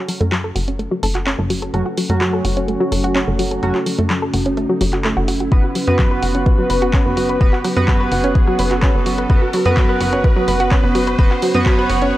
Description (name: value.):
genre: melodic techno.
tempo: 127 BPM.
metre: 4/4.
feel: straight.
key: unclear.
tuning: A4 = 441 Hz.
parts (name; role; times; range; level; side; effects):
dark analog pad; sustained chords; 0.0-12.1 s; C#4 to B4; -25 LUFS; equal; wide subtle chorus, sidechain pumping.
analog pluck; arpeggios; 0.0-12.1 s; F#3 to B4; -20 LUFS; equal; chorus, sidechain pumping, analog delay.
riser and swell; sound effects; 0.7-12.2 s; none; -31 LUFS; equal; none.
punchy analog drum machine; drums; 0.1-12.1 s; handclaps, hi-hat, rim click; -26 LUFS; equal; high-pass filter on hats, high-pass filter on snare.
plucky analog bass; bass; 0.2-12.1 s; F#1 to F#2; -21 LUFS; equal; sidechain pumping.
sync-sweep polysynth; stabs; 1.7-12.2 s; F#3 to B4; -21 LUFS; right 2 dB; chorus, sidechain pumping, analog delay.
electronic kick drum; drums; 5.5-11.8 s; none; -14 LUFS; equal; none.
room: light reverb, digital ambience.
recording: dry, gritty hardware recording.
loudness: -14 LUFS.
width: side -15 dB against mid.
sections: 0.0-12.2 A section.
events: build-up 0.0-12.2; filter sweep on synth arpeggio sound 0.0-12.2; filter sweep on analog polysynth 0.0-12.2; filter sweep on analog synth pad 0.0-12.2; riser 0.7-12.1.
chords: 0.0 F#m; 5.5 Bsus2/F#.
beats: 0.32 0.79 1.27 | 1.74 2.21 2.68 3.16 | 3.63 4.10 4.57 5.05 | 5.52 5.99 6.46 6.94 | 7.41 7.88 8.35 8.83 | 9.30 9.77 10.24 10.71 | 11.19 11.66 12.13.